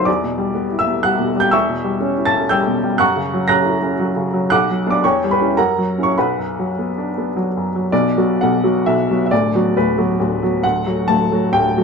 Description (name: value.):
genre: classical, romantic character piece for solo piano.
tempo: 99-139 BPM.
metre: 3/4.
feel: rubato.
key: B minor.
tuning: A4 = 440 Hz.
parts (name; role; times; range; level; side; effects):
clear upright piano; solo; 0.0-11.8 s; D1 to A#6; -15 LUFS; equal; none.
room: light reverb.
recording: dark, warm production.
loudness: -15 LUFS.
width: side -5 dB against mid.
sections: 0.0-7.9 A section; 7.9-11.8 B section.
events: none.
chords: 0.1 Em; 1.5 C#m7b5/E; 3.0 F#7; 4.5 Bm; 5.0 C#dim/E; 5.6 F#7; 6.2 Bm; 9.3 Bm/D; 10.6 D.